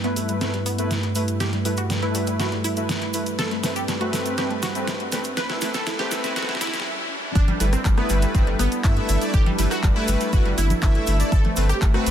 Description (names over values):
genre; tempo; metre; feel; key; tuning
progressive house; 121 BPM; 4/4; straight; G major; A4 = 440 Hz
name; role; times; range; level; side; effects
warm analog pad; sustained chords; 0.0-12.1 s; G2 to B4; -28 LUFS; right 2 dB; chorus, sidechain pumping
wide unison pluck; arpeggios; 0.0-12.1 s; G3 to B4; -28 LUFS; equal; phaser, cassette tape, sidechain pumping, ping-pong delay
soft supersaw; stabs; 0.0-12.1 s; A3 to E5; -28 LUFS; left 1 dB; sidechain pumping, low-pass filter, ping-pong delay
pop drum kit; drums; 0.0-12.1 s; handclaps, hi-hat, rim click, snare drum; -29 LUFS; equal; overdrive
riser and swell; sound effects; 2.8-7.4 s; none; -40 LUFS; equal; none
cabasa; percussion; 0.2-12.1 s; none; -35 LUFS; right 4 dB; none
saturated sub bass; bass; 7.4-12.1 s; G1 to G2; -22 LUFS; equal; sidechain pumping
electronic kick drum; drums; 7.4-11.9 s; none; -19 LUFS; equal; none
congas; percussion; 7.5-11.5 s; none; -32 LUFS; left 2 dB; sidechain pumping on perc
room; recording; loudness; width
light reverb, digital ambience; dense, heavily limited modern master, high-pass filter; -20 LUFS; side -10 dB against mid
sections
0.0-7.4 A section; 7.4-12.1 B section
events
build-up 0.0-7.4; drum fill 0.0-6.9; filter sweep on synth pluck 0.0-7.4; filter sweep on supersaw synth 0.0-7.4; filter sweep 0.0-7.4; swell 6.4-7.4; break 6.9-7.4; drop 7.4-12.1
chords
0.0 G69; 11.3 Amadd9/G